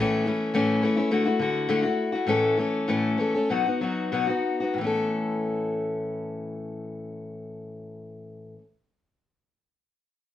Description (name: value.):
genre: folk.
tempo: 90-107 BPM.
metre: 4/4.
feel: straight.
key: A major.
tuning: A4 = 440 Hz.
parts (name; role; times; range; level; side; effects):
picked steel-string acoustic guitar; accompaniment; 0.0-8.7 s; A2 to A4; -24 LUFS; left 2 dB; none.
room: wet studio reverb, RT60 0.6 s.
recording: none.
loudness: -23 LUFS.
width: side -12 dB against mid.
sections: 0.0-4.8 A section; 4.8-7.5 B section.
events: slowing down 0.0-4.8.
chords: 0.0 A; 1.1 Dadd9; 2.3 A; 3.5 B; 4.8 A.